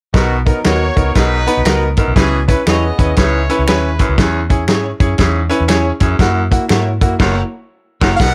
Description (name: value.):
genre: uptempo 1960s-style soul.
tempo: 119 BPM.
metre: 4/4.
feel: swing 63% on 8ths.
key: B major.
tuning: A4 = 440 Hz.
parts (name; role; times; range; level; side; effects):
clear horn section; second line; 0.1-4.1 s; D#3 to D#5; -23 LUFS; equal; none.
bright grand piano; accompaniment; 0.1-8.3 s; A#3 to B4; -20 LUFS; equal; none.
bright baritone saxophone; riff; 0.1-8.3 s; E2 to B2; -24 LUFS; equal; none.
vintage muted fingered electric bass; bass; 0.1-8.3 s; F#1 to G#2; -20 LUFS; equal; none.
warm soul drum kit; drums; 0.1-8.3 s; crash cymbal, hi-hat, kick drum, snare drum; -16 LUFS; equal; none.
electric guitar through a small old amp; stabs; 0.6-8.1 s; E4 to D#5; -25 LUFS; equal; analog chorus.
finger snap; percussion; 0.6-6.8 s; none; -26 LUFS; equal; none.
warm harmonica; melody; 8.2-8.3 s; E#5 to F#5; -17 LUFS; equal; none.
room: light reverb.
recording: none.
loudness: -14 LUFS.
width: mono.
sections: 0.1-8.2 A section.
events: band accent 7.2-8.2.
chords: 0.1 Bmaj7; 2.2 C#m7; 4.2 E6; 6.2 F#7.